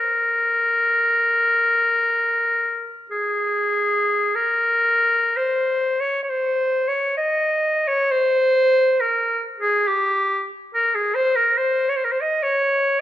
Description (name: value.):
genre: classical, free, expressive piece for unaccompanied clarinet.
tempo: 41-72 BPM.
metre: 4/4.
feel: rubato.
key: unclear.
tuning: A4 = 440 Hz.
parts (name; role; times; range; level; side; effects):
bright clarinet; solo; 0.0-13.0 s; G4 to Eb5; -18 LUFS; left 1 dB; none.
room: light reverb.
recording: none.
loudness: -18 LUFS.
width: side -12 dB against mid.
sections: 0.0-4.4 A section; 4.4-13.0 B section.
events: none.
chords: none.